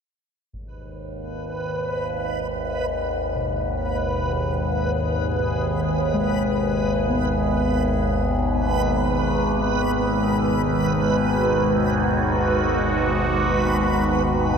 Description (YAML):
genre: dark ambient drone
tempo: free time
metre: none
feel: none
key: G# minor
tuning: A4 = 440 Hz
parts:
  - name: sweeping resonant pad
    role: sustained chords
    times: 0.5-14.6 s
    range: B2 to G#4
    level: -28 LUFS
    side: equal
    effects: chorus
  - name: overtone-sweeping drone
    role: drone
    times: 0.9-14.6 s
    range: G#1 to D#2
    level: -23 LUFS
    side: equal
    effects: chorus, built-in reverb, phaser
  - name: concert bass drum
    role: percussion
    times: 0.5-0.7 s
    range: none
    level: -45 LUFS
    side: equal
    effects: low-pass filter on kick
  - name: backwards swelling texture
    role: texture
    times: 1.3-14.6 s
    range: B4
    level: -27 LUFS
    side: right 3 dB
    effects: built-in reverb
  - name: bronze singing bowl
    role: arpeggios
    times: 3.4-12.9 s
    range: B2 to B3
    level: -27 LUFS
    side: left 2 dB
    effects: analog delay
room: wet spring reverb, RT60 2.6 s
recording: echo-heavy mix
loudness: -20 LUFS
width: side -6 dB against mid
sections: 0.5-14.6 A section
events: fade-in on analog synth pad 0.5-14.6; fade-in on drum 0.5-14.6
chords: 0.5 G#m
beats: free time